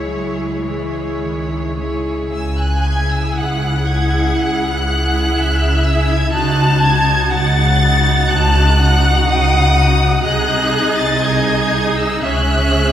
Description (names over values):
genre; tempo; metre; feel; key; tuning
classical, slow romantic movement for string orchestra; 52-64 BPM; 4/4; rubato; C# minor; A4 = 441 Hz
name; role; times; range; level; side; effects
rich chamber violin section; melody; 0.0-12.9 s; C#5 to A6; -21 LUFS; left 1 dB; none
rich chamber violin section; second line; 0.0-12.9 s; G#4 to A5; -20 LUFS; left 1 dB; none
rich chamber viola section; accompaniment; 0.0-12.9 s; G#3 to G#4; -21 LUFS; right 1 dB; none
warm symphonic cello section; bass; 0.0-12.9 s; B#2 to F#3; -21 LUFS; equal; none
rich chamber double bass section; bass; 0.1-12.9 s; B#1 to C#2; -18 LUFS; equal; none
room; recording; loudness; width
wet scoring stage reverb, RT60 1.9 s; heard from further back in the room; -13 LUFS; side -10 dB against mid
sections
0.0-2.3 A section; 2.3-12.9 A section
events
none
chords
0.0 C#m; 6.3 D#m7b5/C#; 10.2 G#/B#; 12.2 C#m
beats
0.08 1.21 | 2.34 3.38 4.38 5.38 | 6.34 7.33 8.32 9.27 | 10.24 11.23 12.23